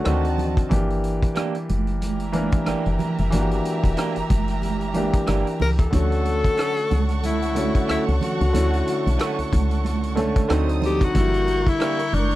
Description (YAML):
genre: lush 1970s-style soul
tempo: 92 BPM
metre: 4/4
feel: swing 58% on 16ths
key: D major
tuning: A4 = 440 Hz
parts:
  - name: clear concert grand piano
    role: accompaniment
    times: 0.0-12.4 s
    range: D3 to Bb4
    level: -25 LUFS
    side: equal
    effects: none
  - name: warm studio violin section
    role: second line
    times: 0.1-12.4 s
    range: F#4 to G6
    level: -32 LUFS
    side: right 4 dB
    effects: none
  - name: electric guitar through a small old amp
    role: riff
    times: 0.1-12.0 s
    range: Eb3 to G4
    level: -28 LUFS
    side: right 7 dB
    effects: none
  - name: woody FM bass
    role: bass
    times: 0.1-12.4 s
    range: E1 to D2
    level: -23 LUFS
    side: equal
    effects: none
  - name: vintage drum kit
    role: drums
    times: 0.1-12.4 s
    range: hi-hat, kick drum, rim click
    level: -23 LUFS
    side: equal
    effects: none
  - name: congas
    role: percussion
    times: 0.4-12.3 s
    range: none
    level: -30 LUFS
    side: right 7 dB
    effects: none
  - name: breathy tenor saxophone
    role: melody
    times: 5.6-12.4 s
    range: D4 to Bb4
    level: -24 LUFS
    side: left 4 dB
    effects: none
room: little or no reverb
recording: dry, close 1970s-style studio recording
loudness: -19 LUFS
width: side -15 dB against mid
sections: 0.0-12.4 A section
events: none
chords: 0.1 D7b9; 0.7 Gm6; 5.9 Dmaj7; 10.5 D7b9; 11.1 Gm6